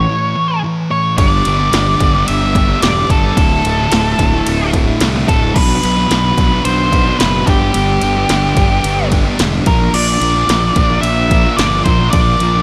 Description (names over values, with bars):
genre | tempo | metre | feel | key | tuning
quiet-loud alternative rock | 110 BPM | 4/4 | straight | unclear | A4 = 439 Hz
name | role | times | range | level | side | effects
octave-fuzz lead guitar | melody | 0.0-12.6 s | G4 to E5 | -19 LUFS | equal | distortion
thick fuzz guitar | riff | 0.0-12.6 s | D2 to B4 | -22 LUFS | equal | distortion, slapback echo
fuzz fingered electric bass | bass | 0.0-12.6 s | D1 to C2 | -20 LUFS | equal | overdrive
thick fuzz guitar | riff | 1.2-12.6 s | D2 to B4 | -22 LUFS | equal | distortion, slapback echo
punchy analog drum machine | drums | 1.2-12.5 s | crash cymbal, kick drum, ride cymbal, snare drum | -18 LUFS | equal | none
room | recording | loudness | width
light reverb | none | -13 LUFS | mono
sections
0.0-1.2 A section; 1.2-12.6 B section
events
break 0.1-1.2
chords
0.0 A; 1.2 G; 3.4 Dsus2; 5.6 Bm; 7.5 G; 9.7 Bb